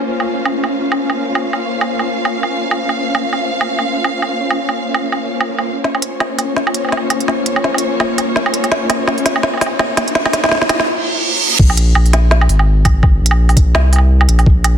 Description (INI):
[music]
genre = half-time drum and bass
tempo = 167 BPM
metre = 4/4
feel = swing 57% on 16ths, half-time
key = Bb minor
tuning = A4 = 440 Hz
[part]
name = warm symphonic string section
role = sustained chords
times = 0.0-11.6 s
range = Bb3 to F5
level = -20 LUFS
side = left 1 dB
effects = sidechain pumping
[part]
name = pulsing gated texture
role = texture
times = 0.0-10.9 s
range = Db4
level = -22 LUFS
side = left 1 dB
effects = chorus, built-in reverb
[part]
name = organic electronic drum kit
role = drums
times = 0.2-14.7 s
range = crash cymbal, hi-hat, snare drum, woodblock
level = -17 LUFS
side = right 2 dB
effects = low-pass filter on perc, low-pass filter on snare, low-pass filter on hats, low-pass filter on cymbals
[part]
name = swell, riser and reverse cymbal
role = sound effects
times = 5.3-11.6 s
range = none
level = -20 LUFS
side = right 3 dB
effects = none
[part]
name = saturated sub bass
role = bass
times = 11.6-14.8 s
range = Ab1 to C2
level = -11 LUFS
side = equal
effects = tube saturation
[part]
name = electronic kick drum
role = drums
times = 11.6-14.5 s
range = none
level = -10 LUFS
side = equal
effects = overdrive
[sound]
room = light reverb, digital ambience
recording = dense, heavily limited modern master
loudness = -12 LUFS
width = side -9 dB against mid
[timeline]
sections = 0.0-5.8 A section; 5.8-11.6 B section; 11.6-14.8 C section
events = filter sweep on string section 0.0-5.8; swell 5.3-5.8; build-up 5.8-11.6; drum fill 5.8-10.9; reverse cymbal 10.9-11.6; drop 11.6-14.8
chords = 0.0 Bbm; 11.6 Abadd9